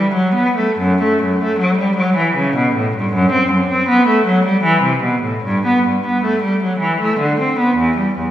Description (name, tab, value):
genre	classical, baroque-style suite movement for unaccompanied cello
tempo	77 BPM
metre	3/4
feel	rubato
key	G major from 3.1 s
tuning	A4 = 440 Hz
part	rich cello	solo	0.0-8.3 s	E2 to C4	-13 LUFS	equal	none
room	wet recital hall reverb, RT60 1.4 s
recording	recorded in a church or concert hall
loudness	-13 LUFS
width	side -12 dB against mid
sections	0.0-8.3 A section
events	none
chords	none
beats	| 0.78 1.58 2.35 | 3.13 3.89 4.65 | 5.44 6.23 7.00 | 7.78